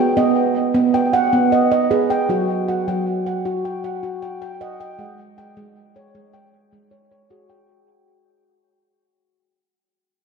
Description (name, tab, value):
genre	world meditative, meditative tuned percussion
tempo	156 BPM (eighths)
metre	7/8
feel	straight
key	unclear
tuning	A4 = 440 Hz
part	handpan	solo	0.0-7.9 s	F#3 to G5	-17 LUFS	right 2 dB	diffuse ambient delay
room	wet lush hall reverb, RT60 2.7 s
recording	dreamy mix soaked in reverb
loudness	-16 LUFS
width	side -5 dB against mid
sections	0.0-7.7 A section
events	fade-out 0.0-7.7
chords	0.0 B; 2.3 Gmaj7(#5, no3)/F#; 5.0 G#7sus4